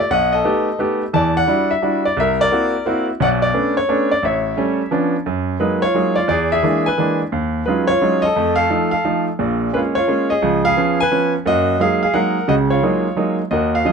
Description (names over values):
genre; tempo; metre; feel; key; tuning
jazz; 174 BPM; 3/4; swing 65% on 8ths; F# major from 5.3 s; A4 = 437 Hz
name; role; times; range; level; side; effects
bright grand piano; solo; 0.0-13.9 s; A1 to A5; -15 LUFS; equal; none
room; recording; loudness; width
light reverb; close, detailed microphones; -15 LUFS; side -5 dB against mid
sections
0.0-5.3 A section; 5.3-13.5 B section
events
none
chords
0.1 B7b13; 1.1 Em9; 2.2 C7#11; 3.2 Bm9; 4.2 A7; 4.9 C#7b9; 5.3 F#69; 6.3 E7#11; 7.3 D#m11; 8.4 F7; 9.4 A#m7; 10.4 C#7; 11.4 F#69